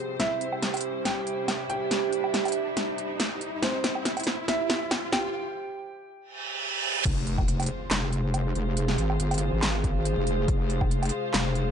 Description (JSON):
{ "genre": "heavy wobble dubstep", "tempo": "140 BPM", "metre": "4/4", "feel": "swing 54% on 16ths, half-time", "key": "F harmonic minor", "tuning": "A4 = 440 Hz", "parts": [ { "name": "dark concert grand piano", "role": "melody", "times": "0.0-7.0 s", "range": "G3 to G5", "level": "-33 LUFS", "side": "right 1 dB", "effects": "ping-pong delay" }, { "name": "dark studio string section", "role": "sustained chords", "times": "0.0-11.7 s", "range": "C3 to C5", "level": "-37 LUFS", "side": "left 1 dB", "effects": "sidechain pumping" }, { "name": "riser, reverse cymbal and impact", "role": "sound effects", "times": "0.0-8.8 s", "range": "none", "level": "-33 LUFS", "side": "right 2 dB", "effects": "none" }, { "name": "warbly tape-like pad", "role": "texture", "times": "0.0-11.7 s", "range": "G4 to F5", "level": "-33 LUFS", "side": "right 4 dB", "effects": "chorus, built-in reverb, sidechain pumping" }, { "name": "big-room dance drum kit", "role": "drums", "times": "0.2-11.6 s", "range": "crash cymbal, handclaps, hi-hat, snare drum, woodblock", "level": "-28 LUFS", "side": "equal", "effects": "none" }, { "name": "wobble bass", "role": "bass", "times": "7.1-11.7 s", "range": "F1 to Ab1", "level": "-27 LUFS", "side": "equal", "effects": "chorus, overdrive" }, { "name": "electronic kick drum", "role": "drums", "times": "7.1-10.9 s", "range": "none", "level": "-26 LUFS", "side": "equal", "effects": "none" } ], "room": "light reverb, digital ambience", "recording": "nothing above 10.5 kHz", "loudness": "-25 LUFS", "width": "side -8 dB against mid", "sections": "0.0-7.1 A section; 7.1-11.7 B section", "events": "build-up 0.0-7.1; riser 0.0-5.3; drum fill 0.2-5.3; break 5.3-7.1; reverse cymbal 6.4-7.1; drop 7.1-11.7; impact 7.1-8.8", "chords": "0.2 C; 7.1 Fm" }